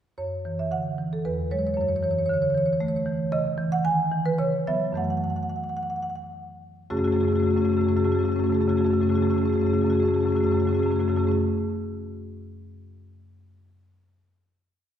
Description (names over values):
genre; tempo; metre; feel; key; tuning
classical, contemporary piece for solo marimba; 89-117 BPM; 3/4; rubato; F# minor; A4 = 439 Hz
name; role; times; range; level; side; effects
marimba with medium mallets; solo; 0.2-11.4 s; E2 to G#5; -22 LUFS; equal; none
room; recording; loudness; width
wet concert hall reverb, RT60 1.7 s; heard from further back in the room; -22 LUFS; side -9 dB against mid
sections
0.2-6.9 A section; 6.9-10.8 final chord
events
slowing down 2.5-6.9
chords
0.2 F#7(no3); 1.2 Eadd9; 1.8 F#m7; 3.3 C#madd9; 4.4 C#7sus4; 5.0 F#m7; 6.9 F#madd9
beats
| 0.18 0.72 1.25 | 1.77 2.29 2.80 | 3.32 3.85 4.39 | 4.97 5.59 6.24 | 6.90 7.55 8.20 | 8.84 9.49 10.13